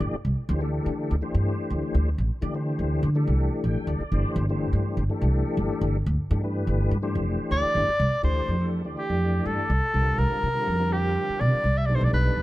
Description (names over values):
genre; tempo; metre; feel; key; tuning
jazz; 124 BPM; 4/4; straight; D minor; A4 = 443 Hz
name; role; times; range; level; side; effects
tonewheel organ; accompaniment; 0.0-12.4 s; D3 to G5; -30 LUFS; left 2 dB; slow rotary speaker, chorus vibrato
upright bass; bass; 0.0-12.4 s; F1 to D3; -24 LUFS; equal; none
breathy soprano saxophone; melody; 7.5-12.4 s; G4 to E5; -26 LUFS; equal; none
room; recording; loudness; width
little or no reverb; none; -22 LUFS; side -16 dB against mid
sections
0.0-8.2 A section; 8.2-12.4 B section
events
tonewheel organ fill 3.4-4.4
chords
0.5 D9sus4; 4.1 Gsus4; 8.2 Dm9; 9.9 C9sus4; 11.9 B7alt